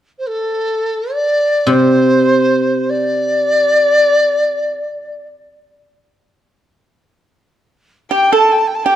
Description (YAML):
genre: chinese traditional, Chinese chamber ensemble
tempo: free time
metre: none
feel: none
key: unclear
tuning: A4 = 440 Hz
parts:
  - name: large dizi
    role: melody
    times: 0.2-9.0 s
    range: A4 to A5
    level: -14 LUFS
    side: equal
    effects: none
  - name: guzheng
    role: accompaniment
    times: 1.7-4.8 s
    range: C3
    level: -15 LUFS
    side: equal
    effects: none
  - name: dark erhu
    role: second line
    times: 8.1-9.0 s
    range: G5 to A5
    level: -14 LUFS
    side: left 4 dB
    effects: none
  - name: pipa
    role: second line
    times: 8.1-9.0 s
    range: G4 to A4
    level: -14 LUFS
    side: right 5 dB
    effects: none
room: moderate recital hall reverb, RT60 1.7 s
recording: dark, warm production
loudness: -12 LUFS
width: side -11 dB against mid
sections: 0.0-7.7 A section; 7.7-9.0 B section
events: none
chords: none